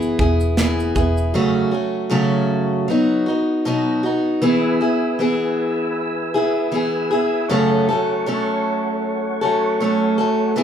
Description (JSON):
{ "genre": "acoustic pop", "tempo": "78 BPM", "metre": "4/4", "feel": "swing 55% on 16ths", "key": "E major", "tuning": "A4 = 440 Hz", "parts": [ { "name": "picked steel-string acoustic guitar", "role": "accompaniment", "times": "0.0-10.6 s", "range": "F#2 to A4", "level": "-17 LUFS", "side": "equal", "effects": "none" }, { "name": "vintage muted fingered electric bass", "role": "bass", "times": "0.0-1.3 s", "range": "E1 to F#1", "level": "-21 LUFS", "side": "equal", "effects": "none" }, { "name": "modern studio drum kit", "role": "drums", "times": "0.0-1.3 s", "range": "kick drum, shaker, snare drum", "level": "-22 LUFS", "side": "right 2 dB", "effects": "none" }, { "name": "tonewheel organ", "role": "sustained chords", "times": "4.4-10.6 s", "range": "G#4 to E6", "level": "-27 LUFS", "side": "right 2 dB", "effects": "chorus vibrato, slow rotary speaker" } ], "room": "moderate large studio reverb, RT60 0.9 s", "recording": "band playing live in one room", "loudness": "-17 LUFS", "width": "side -8 dB against mid", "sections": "0.0-4.4 A section; 4.4-10.6 B section", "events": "none", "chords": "0.0 E; 1.3 F#m; 2.9 B; 4.4 E; 7.5 F#m", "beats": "0.58 | 1.35 2.12 2.88 3.65 | 4.42 5.19 5.96 6.72 | 7.49 8.26 9.03 9.80 | 10.56" }